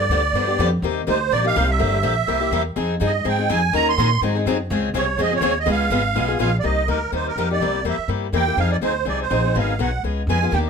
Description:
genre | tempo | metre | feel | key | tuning
acoustic string swing (jazz manouche) | 248 BPM | 4/4 | swing 54% on 8ths | C minor | A4 = 440 Hz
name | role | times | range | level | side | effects
musette accordion | melody | 0.0-10.7 s | Bb4 to C6 | -21 LUFS | right 7 dB | none
picked swing-style acoustic guitar | accompaniment | 0.0-10.7 s | C3 to Bb4 | -23 LUFS | left 8 dB | none
upright bass | bass | 0.0-10.7 s | G1 to Bb2 | -22 LUFS | equal | none
picked steel-string acoustic guitar | accompaniment | 2.8-6.5, 10.5-10.7 s | Db3 to Bb4 | -29 LUFS | right 6 dB | none
room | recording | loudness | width
moderate small room reverb, RT60 0.6 s | minimal, uncompressed stereo recording | -18 LUFS | side -6 dB against mid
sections
0.0-6.6 A section; 6.6-10.7 B section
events
none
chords
0.0 G7; 0.8 Cm11; 1.8 Gm7; 2.3 C7; 2.8 Fm9; 3.7 Ebm7; 4.2 Ab7; 4.7 Dbmaj7; 5.7 Db7; 6.6 Cm11; 7.6 C7; 8.6 Fm7; 9.6 Abm7; 10.0 Db7

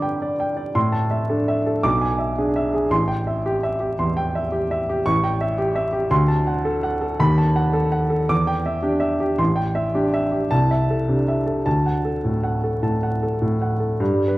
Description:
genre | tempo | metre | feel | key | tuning
classical, virtuoso piano study | 101-114 BPM | 4/4 | rubato | unclear | A4 = 439 Hz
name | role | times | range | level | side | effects
warm baby grand piano | solo | 0.0-14.4 s | A1 to D6 | -18 LUFS | equal | none
room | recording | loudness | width
wet recital hall reverb, RT60 1.7 s | dark, warm production, vinyl crackle | -19 LUFS | side -18 dB against mid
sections
0.0-14.0 A section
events
none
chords
0.0 G; 0.8 Am; 1.8 E7/B; 2.9 Am7; 5.0 A7; 6.1 D7; 7.2 B7/D#; 8.3 Em7; 9.4 Am7; 10.5 Am/C; 11.7 D

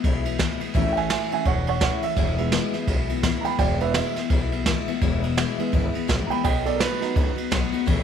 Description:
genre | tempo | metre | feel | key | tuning
rockabilly | 168 BPM | 4/4 | swing 60% on 8ths | E major | A4 = 440 Hz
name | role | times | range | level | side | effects
picked steel-string acoustic guitar | accompaniment | 0.0-8.0 s | E2 to F#4 | -27 LUFS | left 16 dB | none
upright bass | bass | 0.0-8.0 s | E1 to C#2 | -27 LUFS | left 1 dB | none
jazz brush drum kit | drums | 0.0-8.0 s | kick drum, ride cymbal, snare drum | -24 LUFS | right 1 dB | none
warm upright piano | accompaniment | 0.8-7.8 s | F#3 to B5 | -27 LUFS | right 11 dB | none
room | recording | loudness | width
small room ambience | 1960s-style stereo with parts hard left and right | -21 LUFS | side -8 dB against mid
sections
0.0-8.0 A section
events
upright piano solo 0.0-8.0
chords
0.0 E; 0.7 A; 2.2 E; 6.4 B

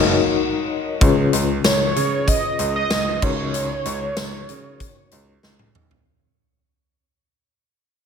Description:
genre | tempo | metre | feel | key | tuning
1980s-style pop | 95 BPM | 4/4 | straight | F# major | A4 = 440 Hz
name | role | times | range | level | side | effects
wide unison lead | melody | 0.0-5.4 s | C#5 to F#5 | -25 LUFS | right 2 dB | ping-pong delay, shimmer reverb
FM electric piano with tremolo | accompaniment | 0.0-6.1 s | C#3 to D#5 | -22 LUFS | left 7 dB | shimmer reverb
clear baby grand piano | bass | 0.0-6.0 s | F#1 to C#3 | -26 LUFS | right 3 dB | none
big rock drum kit | drums | 1.0-6.1 s | crash cymbal, hi-hat, kick drum, snare drum, tambourine, toms | -22 LUFS | equal | gated reverb
room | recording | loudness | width
moderate lush hall reverb, RT60 1.9 s, small room ambience | none | -18 LUFS | side -7 dB against mid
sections
0.0-1.0 A section; 1.0-6.1 B section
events
band accent 0.0-1.0; fade-out 1.0-6.1; drum fill 5.4-6.1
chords
0.0 F#6; 1.0 C#7; 3.2 F#6/C#

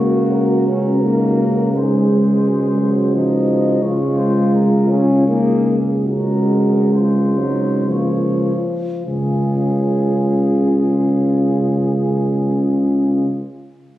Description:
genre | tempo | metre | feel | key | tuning
classical, hymn-like piece for brass band | 48-91 BPM | 3/4 | rubato | Db major | A4 = 436 Hz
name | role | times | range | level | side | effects
dark cornet | melody | 0.0-13.3 s | Ab4 to Eb5 | -29 LUFS | left 3 dB | none
mellow French horn section | second line | 0.0-13.3 s | Eb4 to Ab4 | -24 LUFS | right 3 dB | none
mellow euphonium | accompaniment | 0.0-13.3 s | Bb3 to Gb4 | -26 LUFS | left 2 dB | none
mellow trombone | accompaniment | 0.0-13.3 s | Db3 to Db4 | -19 LUFS | right 1 dB | none
mellow tuba | bass | 0.0-13.3 s | Db2 | -17 LUFS | equal | none
room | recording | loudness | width
light reverb | recorded on a phone in the room, studio reverb, compression | -14 LUFS | side -14 dB against mid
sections
0.0-9.1 A section; 9.1-14.0 B section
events
slowing down 2.8-9.1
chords
0.0 Gb/Db; 1.8 Ab7/Db; 3.8 Db; 6.1 Gb/Db; 9.1 Db

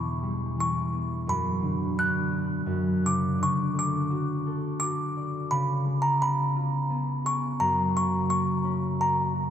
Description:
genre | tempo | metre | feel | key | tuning
children's music | 86 BPM | 3/4 | straight | unclear | A4 = 440 Hz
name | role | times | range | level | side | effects
music box | melody | 0.0-9.5 s | A#5 to F#6 | -28 LUFS | equal | none
concert harp | accompaniment | 0.0-9.5 s | E2 to D5 | -27 LUFS | equal | none
room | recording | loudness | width
wet cathedral reverb, RT60 6.2 s | in a vast, echoing space | -24 LUFS | side -9 dB against mid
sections
0.0-9.5 A section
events
none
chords
0.0 Em; 1.3 Bm/F#; 2.7 F#5; 3.4 D; 5.5 C#7; 7.6 F#

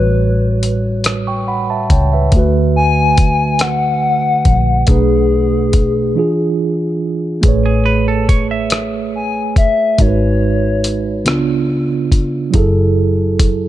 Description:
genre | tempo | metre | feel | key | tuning
slow six-eight R&B | 47 BPM (dotted quarters) | 6/8 | straight | A major | A4 = 441 Hz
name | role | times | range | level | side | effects
hollow clarinet-like synth lead | melody | 0.0-11.7 s | G#4 to G#5 | -17 LUFS | left 4 dB | chorus, tape echo
mellow tine electric piano | accompaniment | 0.0-13.7 s | A2 to C#6 | -16 LUFS | right 3 dB | slow stereo tremolo
vintage muted fingered electric bass | bass | 0.0-13.7 s | F#1 to D2 | -17 LUFS | equal | none
dusty soul sampler-style drum kit | drums | 0.6-13.6 s | hi-hat, kick drum, rim click | -14 LUFS | equal | none
semi-hollow electric guitar | second line | 7.7-9.7 s | G#4 to E5 | -21 LUFS | right 6 dB | tremolo
room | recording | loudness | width
little or no reverb | dark, warm production, faint mains hum | -12 LUFS | side -13 dB against mid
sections
0.0-13.7 A section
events
tine electric piano fill 1.0-2.3; break 6.2-7.4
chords
0.0 A13; 2.3 D6; 4.9 Bm7; 6.2 E7b9; 7.4 Amaj9; 10.0 G#m7; 11.3 C#7b9; 12.5 F#m9

